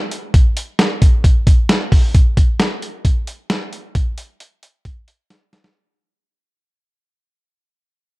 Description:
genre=pop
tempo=133 BPM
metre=4/4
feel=straight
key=none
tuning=none
part: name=dusty soul sampler-style drum kit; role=drums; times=0.1-5.7 s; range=hi-hat, kick drum, snare drum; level=-13 LUFS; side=equal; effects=none
room=little or no reverb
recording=dark, warm production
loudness=-14 LUFS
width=side -21 dB against mid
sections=0.0-2.1 A section; 2.1-5.8 B section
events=fade-out 2.1-5.8; drum fill 5.3-5.8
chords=none

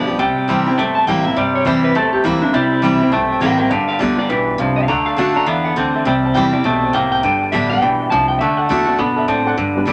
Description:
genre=rockabilly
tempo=204 BPM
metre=4/4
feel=swing 61% on 8ths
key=unclear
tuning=A4 = 438 Hz
part: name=electric guitar through a small old amp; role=melody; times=0.0-8.9 s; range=D4 to Bb5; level=-22 LUFS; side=equal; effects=none
part: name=picked steel-string acoustic guitar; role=accompaniment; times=0.0-9.9 s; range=G2 to G4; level=-22 LUFS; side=equal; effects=none
part: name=twangy electric guitar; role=riff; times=0.0-9.9 s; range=G2 to C4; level=-20 LUFS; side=equal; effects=none
part: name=upright bass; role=bass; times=0.0-9.9 s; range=G1 to A2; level=-32 LUFS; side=equal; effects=none
part: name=warm upright piano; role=accompaniment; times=0.1-9.9 s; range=G3 to A5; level=-27 LUFS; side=equal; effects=none
room=moderate small room reverb, RT60 0.6 s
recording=none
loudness=-16 LUFS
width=mono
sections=0.0-9.6 A section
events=none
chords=0.2 C; 3.7 G; 4.9 D; 6.1 C; 7.2 G; 8.4 D

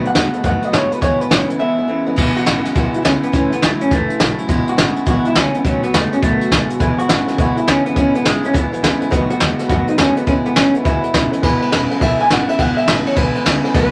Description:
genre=rockabilly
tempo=208 BPM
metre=4/4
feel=swing 64% on 8ths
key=E major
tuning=A4 = 439 Hz
part: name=picked steel-string acoustic guitar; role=accompaniment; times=0.0-13.9 s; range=E2 to F#4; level=-28 LUFS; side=equal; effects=none
part: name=warm upright piano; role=accompaniment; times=0.0-2.1, 6.8-13.9 s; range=B4 to A5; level=-29 LUFS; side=equal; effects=none
part: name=electric guitar through a small old amp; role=riff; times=0.0-13.9 s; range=E2 to G#3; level=-23 LUFS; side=equal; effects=none
part: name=upright bass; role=bass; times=0.0-13.9 s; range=E1 to A2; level=-28 LUFS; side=equal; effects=none
part: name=electric guitar through a small old amp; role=melody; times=0.1-13.9 s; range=G#3 to G#5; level=-22 LUFS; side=equal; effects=none
part: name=jazz brush drum kit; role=drums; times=0.1-13.8 s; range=crash cymbal, hi-hat, kick drum, ride cymbal, snare drum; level=-19 LUFS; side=equal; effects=none
room=light reverb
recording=none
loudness=-16 LUFS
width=mono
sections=0.0-2.2 A section; 2.2-11.4 A section; 11.4-13.9 B section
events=break 1.6-2.2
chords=0.0 B7; 1.0 E; 3.3 A; 4.5 E; 5.6 B7; 6.8 E; 9.1 B7; 10.3 E

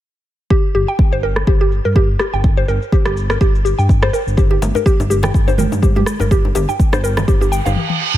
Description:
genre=afro house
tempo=124 BPM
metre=4/4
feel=swing 56% on 16ths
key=G minor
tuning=A4 = 440 Hz
part: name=mallet-like synth pluck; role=arpeggios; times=0.5-7.7 s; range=G4 to G5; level=-19 LUFS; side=equal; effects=chorus, sidechain pumping, ping-pong delay
part: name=afro-pop drum kit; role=drums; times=0.5-8.2 s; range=cabasa, rim click, toms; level=-23 LUFS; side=equal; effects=low-pass filter on perc, low-pass filter on snare, low-pass filter on toms
part: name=electronic kick drum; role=drums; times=0.5-7.4 s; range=none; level=-14 LUFS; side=equal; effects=none
part: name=dark detuned saw bass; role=bass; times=0.7-7.8 s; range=G1 to G2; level=-19 LUFS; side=equal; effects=sidechain pumping
part: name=djembe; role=percussion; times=4.5-7.7 s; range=none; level=-26 LUFS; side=left 3 dB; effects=none
part: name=congas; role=percussion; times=4.6-7.3 s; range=none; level=-23 LUFS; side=right 3 dB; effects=none
part: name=reverse cymbal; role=sound effects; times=7.5-8.2 s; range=none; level=-19 LUFS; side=right 8 dB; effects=none
room=digital ambience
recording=none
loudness=-13 LUFS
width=side -13 dB against mid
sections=0.5-8.2 A section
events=filter sweep on drum 0.5-8.2; filter sweep on detuned saw bass 0.5-8.2; reverse cymbal 7.5-8.2; drum fill 7.8-8.2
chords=0.5 Gm

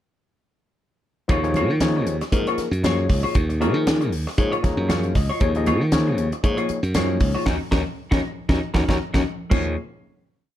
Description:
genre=electric jazz fusion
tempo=117 BPM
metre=4/4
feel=swing 56% on 16ths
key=Eb minor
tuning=A4 = 440 Hz
part: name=overdriven tine electric piano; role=accompaniment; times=1.3-9.8 s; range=F3 to Bb5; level=-25 LUFS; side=left 4 dB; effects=lush chorus
part: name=semi-hollow electric guitar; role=stabs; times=1.3-9.7 s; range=Bb3 to Db5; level=-28 LUFS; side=equal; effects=wide subtle chorus
part: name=glassy slap bass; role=bass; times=1.3-9.8 s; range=Db2 to Eb3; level=-23 LUFS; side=equal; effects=none
part: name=crisp fusion drum kit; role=drums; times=1.3-9.6 s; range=crash cymbal, hi-hat, kick drum, snare drum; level=-24 LUFS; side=equal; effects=none
part: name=congas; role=percussion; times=1.3-9.8 s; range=none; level=-29 LUFS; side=right 1 dB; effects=none
room=light reverb, small room ambience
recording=dark, warm production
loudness=-19 LUFS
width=side -12 dB against mid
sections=1.3-9.5 groove; 9.5-10.6 final chord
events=tine electric piano fill 4.4-5.4; band accent 7.5-9.5; drum fill 9.0-9.5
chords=1.3 Ebm9

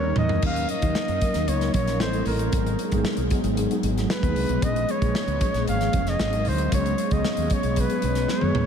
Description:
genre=polished 1980s jazz-funk pop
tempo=114 BPM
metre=4/4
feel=straight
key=G# dorian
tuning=A4 = 442 Hz
part: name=warm flugelhorn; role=melody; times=0.0-8.7 s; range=A#4 to E#5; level=-28 LUFS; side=equal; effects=none
part: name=mellow tine electric piano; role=accompaniment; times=0.0-8.7 s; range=E#3 to A#4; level=-26 LUFS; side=left 1 dB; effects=medium stereo tremolo, ensemble chorus
part: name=mellow fretless electric bass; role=bass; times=0.0-8.7 s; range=E#1 to F#2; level=-27 LUFS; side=equal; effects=none
part: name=congas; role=percussion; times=0.0-8.5 s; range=none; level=barely audible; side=none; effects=none
part: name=modern studio drum kit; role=drums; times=0.2-8.7 s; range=crash cymbal, hi-hat, kick drum, snare drum, toms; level=-27 LUFS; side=equal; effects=none
room=moderate huge ambient reverb, RT60 7.1 s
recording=dreamy mix soaked in reverb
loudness=-21 LUFS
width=side -7 dB against mid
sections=0.4-8.7 A section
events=drum fill 0.0-0.4, 8.3-8.7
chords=0.4 D#m7; 2.0 Am7; 2.5 G#m7; 4.6 A#m7; 6.2 G#7; 6.7 C#7sus4

